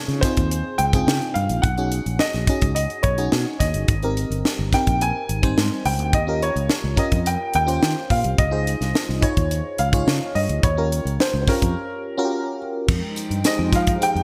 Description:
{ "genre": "polished 1980s jazz-funk pop", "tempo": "107 BPM", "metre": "4/4", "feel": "straight", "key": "unclear", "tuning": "A4 = 441 Hz", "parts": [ { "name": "warm baby grand piano", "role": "melody", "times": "0.0-14.2 s", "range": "Bb4 to Ab5", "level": "-27 LUFS", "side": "equal", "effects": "subtle chorus" }, { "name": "FM electric piano", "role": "accompaniment", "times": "0.0-14.2 s", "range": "C3 to Db5", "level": "-29 LUFS", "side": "equal", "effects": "analog chorus" }, { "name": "fretless electric bass", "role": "bass", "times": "0.1-14.2 s", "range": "G1 to F3", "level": "-26 LUFS", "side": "equal", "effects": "none" }, { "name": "crisp fusion drum kit", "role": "drums", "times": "0.1-14.2 s", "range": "crash cymbal, hi-hat, kick drum, snare drum", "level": "-24 LUFS", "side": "equal", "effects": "none" }, { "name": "hollow soft pad", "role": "sustained chords", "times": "12.9-14.2 s", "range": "F3 to G5", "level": "-31 LUFS", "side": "equal", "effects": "chorus" }, { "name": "tambourine", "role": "percussion", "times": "12.9-13.9 s", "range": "none", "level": "-38 LUFS", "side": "equal", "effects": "none" } ], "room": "moderate lush hall reverb, RT60 1.6 s, small room ambience", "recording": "bright 1980s-style digital production", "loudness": "-21 LUFS", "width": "mono", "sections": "0.0-12.9 A section; 12.9-14.2 B section", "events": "break 11.8-12.9", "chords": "0.0 Dbmaj7; 1.6 B69; 3.9 Abmaj7; 6.1 Eb7; 8.4 Dbmaj7; 10.6 Eb7; 12.9 Fm9" }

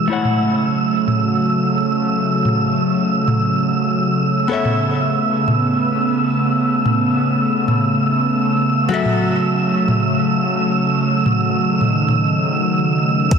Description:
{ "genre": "sunset chillout", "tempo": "109 BPM", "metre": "4/4", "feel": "swing 55% on 16ths", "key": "unclear", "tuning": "A4 = 437 Hz", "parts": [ { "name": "archtop guitar, miked and amplified", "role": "accompaniment", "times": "0.0-13.3 s", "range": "F#3 to F#5", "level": "-21 LUFS", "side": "moving between left 6 dB and right 3 dB", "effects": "auto-pan, low-pass filter, ping-pong delay" }, { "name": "airy breathy pad", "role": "sustained chords", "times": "0.0-13.4 s", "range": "C#3 to B3", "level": "-17 LUFS", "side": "equal", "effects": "chorus" }, { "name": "wind-like tuned noise texture", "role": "texture", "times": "0.0-13.4 s", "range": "E6", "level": "-21 LUFS", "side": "right 2 dB", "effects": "built-in reverb" }, { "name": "smooth R&B drum kit", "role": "drums", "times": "0.2-13.4 s", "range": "hi-hat, shaker, toms", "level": "-21 LUFS", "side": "equal", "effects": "overdrive, low-pass filter on toms, small room ambience, low-pass filter on hats, low-pass filter on perc" }, { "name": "electronic kick drum", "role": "drums", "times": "13.3-13.4 s", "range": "none", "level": "-13 LUFS", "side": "left 1 dB", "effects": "overdrive, small room ambience" } ], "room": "wet lush hall reverb, RT60 2.7 s", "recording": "dense, heavily limited modern master", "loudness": "-15 LUFS", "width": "side -6 dB against mid", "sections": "0.0-13.3 A section", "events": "filter sweep on drum 0.0-13.3; filter sweep on hollow-body jazz guitar 0.0-13.3", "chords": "0.1 A6; 4.5 B9sus4; 8.9 F#m7" }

